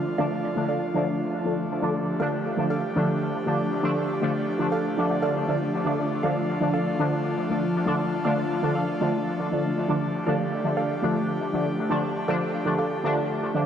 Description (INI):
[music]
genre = dub techno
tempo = 119 BPM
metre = 4/4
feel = swing 54% on 16ths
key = D minor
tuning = A4 = 440 Hz
[part]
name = airy breathy pad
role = sustained chords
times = 0.0-13.7 s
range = F3 to G4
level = -28 LUFS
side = equal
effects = chorus
[part]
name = filtered dub chord stab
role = riff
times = 0.2-12.9 s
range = A4 to F5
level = -33 LUFS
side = right 2 dB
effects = phaser, dub echo
[part]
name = resonant sweep polysynth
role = stabs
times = 0.2-13.7 s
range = D3 to D4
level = -25 LUFS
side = equal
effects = chorus, phaser, dub echo
[sound]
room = wet lush hall reverb, RT60 3.2 s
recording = dreamy mix soaked in reverb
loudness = -23 LUFS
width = side -9 dB against mid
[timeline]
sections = 0.0-13.7 A section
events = filter sweep on analog polysynth 0.0-13.7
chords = 0.0 Dm